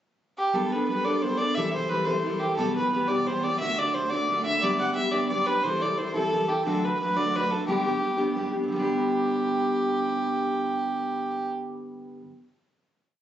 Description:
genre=celtic folk, Celtic jig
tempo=118 BPM (dotted quarters)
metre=6/8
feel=straight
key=G major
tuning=A4 = 440 Hz
part: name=warm fiddle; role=melody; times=0.4-11.5 s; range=G4 to F#5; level=-26 LUFS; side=right 1 dB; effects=plate reverb
part: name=fingerpicked steel-string acoustic guitar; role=accompaniment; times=0.5-12.3 s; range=E2 to A4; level=-27 LUFS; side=equal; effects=none
room=moderate studio ambience, RT60 0.5 s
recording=recorded on a phone in the room, club reverb, compression, nothing above 7.8 kHz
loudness=-24 LUFS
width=side -11 dB against mid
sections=0.0-0.5 pickup bar; 0.5-8.7 A section; 8.7-10.7 final chord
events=none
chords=0.0 N.C.; 0.5 Gadd9; 1.6 C6; 2.6 Em; 3.6 D; 4.6 G; 5.6 C6; 6.7 D; 7.7 G

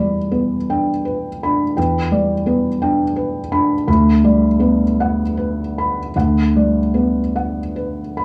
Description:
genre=neoclassical minimalist piano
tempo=49-58 BPM (dotted quarters)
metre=6/8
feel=rubato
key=E minor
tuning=A4 = 441 Hz
part: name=felt-muted upright piano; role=solo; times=0.0-8.2 s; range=D2 to B5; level=-17 LUFS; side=equal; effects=none
room=wet small room reverb, RT60 0.5 s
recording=small room ambience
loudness=-17 LUFS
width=mono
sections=0.0-8.2 A section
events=none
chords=0.0 Em7; 3.9 Gmaj7/D

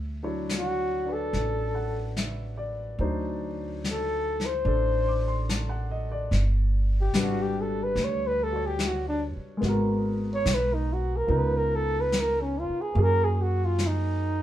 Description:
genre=jazz ballad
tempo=72 BPM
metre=4/4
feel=swing 69% on 8ths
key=unclear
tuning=A4 = 440 Hz
part: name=upright bass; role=bass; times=0.0-14.4 s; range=G1 to F#2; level=-28 LUFS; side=right 1 dB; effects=none
part: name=warm grand piano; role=accompaniment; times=0.2-14.4 s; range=E#3 to D6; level=-32 LUFS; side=left 1 dB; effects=none
part: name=vintage brush drum kit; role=drums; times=0.5-14.4 s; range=brushed snare drum, hi-hat, snare drum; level=-31 LUFS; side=left 2 dB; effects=none
part: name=mellow flugelhorn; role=melody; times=0.6-14.4 s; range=C#4 to C#5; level=-27 LUFS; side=equal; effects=none
room=moderate studio ambience, RT60 0.5 s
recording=band playing live in one room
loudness=-24 LUFS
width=side -12 dB against mid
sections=0.0-14.4 A section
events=flugelhorn solo 0.0-14.4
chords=0.0 Dmaj9; 3.0 D7b9; 6.3 Gmaj7; 9.6 G#m9; 11.3 C#13; 13.0 F#add9

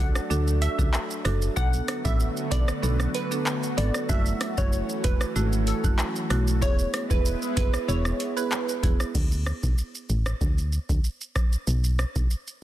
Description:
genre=dancehall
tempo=95 BPM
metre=4/4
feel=straight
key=unclear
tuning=A4 = 441 Hz
part: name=glassy wavetable pluck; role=melody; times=0.0-8.5 s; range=A4 to F#5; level=-32 LUFS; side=right 1 dB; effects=chorus, digital delay
part: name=marimba with medium hard mallets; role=accompaniment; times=0.0-9.0 s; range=A3 to A4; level=-32 LUFS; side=right 4 dB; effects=sidechain pumping
part: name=lush unison pad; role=sustained chords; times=0.0-9.1 s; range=D3 to F#4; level=-33 LUFS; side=equal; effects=chorus, phaser, sidechain pumping
part: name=solid FM bass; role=bass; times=0.0-12.3 s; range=E1 to D2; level=-25 LUFS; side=equal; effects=none
part: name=booming analog drum machine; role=drums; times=0.2-12.6 s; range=crash cymbal, handclaps, hi-hat, kick drum, rim click, shaker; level=-26 LUFS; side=equal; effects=soft clipping on snare
room=digital ambience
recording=dense, heavily limited modern master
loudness=-23 LUFS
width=side -13 dB against mid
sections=0.0-9.1 A section; 9.1-12.6 B section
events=none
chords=0.0 D; 1.6 Bm7; 4.1 F#m7; 6.6 E; 9.1 D5; 11.7 B5

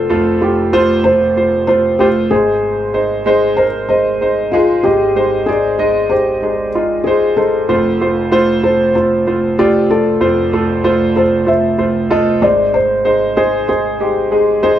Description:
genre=pop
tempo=95 BPM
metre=4/4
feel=swing 56% on 16ths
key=unclear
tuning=A4 = 440 Hz
part: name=felt-muted upright piano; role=melody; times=0.0-14.7 s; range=F4 to E5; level=-16 LUFS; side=left 1 dB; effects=none
part: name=clear concert grand piano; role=accompaniment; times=0.0-14.8 s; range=F1 to Eb5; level=-13 LUFS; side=right 1 dB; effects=none
room=wet studio reverb, RT60 0.5 s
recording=band playing live in one room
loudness=-11 LUFS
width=side -11 dB against mid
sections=0.0-14.8 A section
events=none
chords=0.0 F; 2.3 Ab; 7.7 F; 12.4 Ab

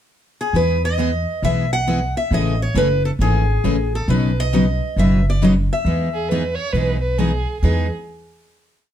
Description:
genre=acoustic string swing (jazz manouche)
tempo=135 BPM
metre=4/4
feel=swing 64% on 8ths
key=E major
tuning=A4 = 445 Hz
part: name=picked steel-string acoustic guitar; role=melody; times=0.4-7.2 s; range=G#4 to F#5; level=-22 LUFS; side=left 1 dB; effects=none
part: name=picked steel-string acoustic guitar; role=accompaniment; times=0.5-7.9 s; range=B2 to B4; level=-21 LUFS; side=left 3 dB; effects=none
part: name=upright bass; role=bass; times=0.5-7.9 s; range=F#1 to E2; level=-20 LUFS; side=equal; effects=none
part: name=picked steel-string acoustic guitar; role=accompaniment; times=0.6-7.9 s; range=B2 to B4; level=-25 LUFS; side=right 4 dB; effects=none
part: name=warm violin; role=second line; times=6.1-7.9 s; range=G#4 to C#5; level=-25 LUFS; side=right 2 dB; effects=none
room=light reverb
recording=dark, warm production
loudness=-16 LUFS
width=side -10 dB against mid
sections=0.0-0.5 pickup bar; 0.5-7.6 A section; 7.6-8.9 final chord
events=none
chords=0.0 N.C.; 0.5 E; 2.3 Amaj7; 4.1 Badd9; 5.9 Emaj7

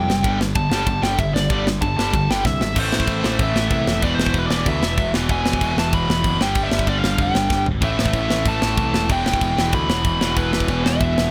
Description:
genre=punk rock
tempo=190 BPM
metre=4/4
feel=straight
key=unclear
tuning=A4 = 440 Hz
part: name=biting lead guitar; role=melody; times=0.0-11.3 s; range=B4 to B5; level=-26 LUFS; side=equal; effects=overdrive
part: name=biting overdriven guitar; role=riff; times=0.0-11.3 s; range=E2 to A3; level=-29 LUFS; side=equal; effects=none
part: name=distorted electric guitar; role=riff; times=0.0-11.3 s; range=E2 to A3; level=-28 LUFS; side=equal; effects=overdrive
part: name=high-gain distorted guitar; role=riff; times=0.0-11.3 s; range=E2 to C4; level=-33 LUFS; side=equal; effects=none
part: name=growling picked electric bass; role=bass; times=0.0-11.3 s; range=E1 to D2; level=-27 LUFS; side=equal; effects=overdrive
part: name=tight metal drum kit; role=drums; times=0.1-11.2 s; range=crash cymbal, kick drum, ride cymbal, snare drum, toms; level=-24 LUFS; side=equal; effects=none
room=little or no reverb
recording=none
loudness=-19 LUFS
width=mono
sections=0.0-2.8 A section; 2.8-11.3 B section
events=lead electric guitar solo 0.0-2.8; drum fill 2.5-2.8, 7.5-7.8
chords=0.2 G5; 2.8 Am; 4.0 E5; 5.1 E; 6.4 G5; 7.8 A5; 9.1 Em; 10.2 E5

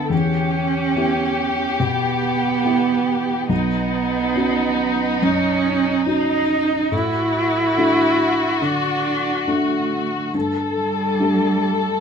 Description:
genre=neoclassical piano and strings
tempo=70 BPM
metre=4/4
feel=rubato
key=E dorian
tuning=A4 = 440 Hz
part: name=muted chamber violin section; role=melody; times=0.0-12.0 s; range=D#4 to A4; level=-23 LUFS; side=left 4 dB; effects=none
part: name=muted cello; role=second line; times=0.0-12.0 s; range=G3 to E4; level=-21 LUFS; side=right 4 dB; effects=none
part: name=felt-muted upright piano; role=accompaniment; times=0.0-12.0 s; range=B1 to A4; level=-22 LUFS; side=left 1 dB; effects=none
room=moderate studio ambience, RT60 0.5 s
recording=minimal, uncompressed stereo recording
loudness=-17 LUFS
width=side -6 dB against mid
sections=0.0-12.0 A section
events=none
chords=0.1 Em; 3.5 Badd9; 6.9 D/A; 10.3 Gsus2

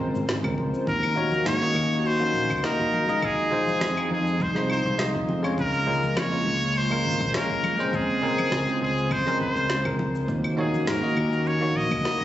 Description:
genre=sunset chillout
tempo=102 BPM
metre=4/4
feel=swing 54% on 16ths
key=Eb dorian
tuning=A4 = 440 Hz
part: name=trumpet with straight mute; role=melody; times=0.0-12.2 s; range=Ab4 to Eb5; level=-26 LUFS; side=left 1 dB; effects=vintage 12-bit sampler grit, ping-pong delay
part: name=bell-like tine electric piano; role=accompaniment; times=0.0-12.2 s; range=Ab3 to Eb5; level=-28 LUFS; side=equal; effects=auto-pan, ping-pong delay
part: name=airy breathy pad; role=sustained chords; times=0.0-12.2 s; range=Db3 to C5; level=-32 LUFS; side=equal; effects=chorus, vintage 12-bit sampler grit
part: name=fingered electric bass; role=bass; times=0.0-12.0 s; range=Ab1 to Ab2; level=-28 LUFS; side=equal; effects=none
part: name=congas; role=percussion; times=0.1-11.7 s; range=none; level=-37 LUFS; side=left 1 dB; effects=none
part: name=electronic shaker, snare drum and claves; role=drums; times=0.2-12.2 s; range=none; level=-32 LUFS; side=equal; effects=none
part: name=electronic kick drum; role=drums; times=0.4-12.2 s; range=none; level=-33 LUFS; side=equal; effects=overdrive
room=light reverb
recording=recorded on a phone in the room, club reverb, nothing above 7.9 kHz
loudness=-22 LUFS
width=side -13 dB against mid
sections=0.0-12.2 A section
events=none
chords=0.0 Bbm9; 0.9 Ebm7; 3.2 Fm7; 5.6 Db6; 7.9 Bbm9/Db; 10.3 Ebm7

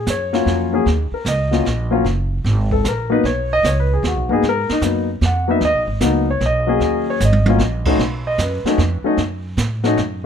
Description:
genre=jazz piano trio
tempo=151 BPM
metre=3/4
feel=swing 66% on 8ths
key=Eb minor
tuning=A4 = 436 Hz
part: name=warm concert grand piano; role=melody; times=0.0-10.0 s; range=Gb3 to Gb5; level=-18 LUFS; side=left 3 dB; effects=plate reverb
part: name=upright bass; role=bass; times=0.0-10.3 s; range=Gb1 to A2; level=-20 LUFS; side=right 1 dB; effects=none
part: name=jazz brush drum kit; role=drums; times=0.1-10.3 s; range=brushed snare drum, crash cymbal, hi-hat, kick drum, snare drum, toms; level=-24 LUFS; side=right 4 dB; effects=none
room=light reverb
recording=close, detailed microphones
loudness=-15 LUFS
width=side -8 dB against mid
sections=0.0-10.3 A section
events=grand piano solo 0.0-10.3; drum fill 7.2-7.6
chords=0.0 Ebm9; 3.2 Abm9; 6.8 Ebm7; 8.0 B7

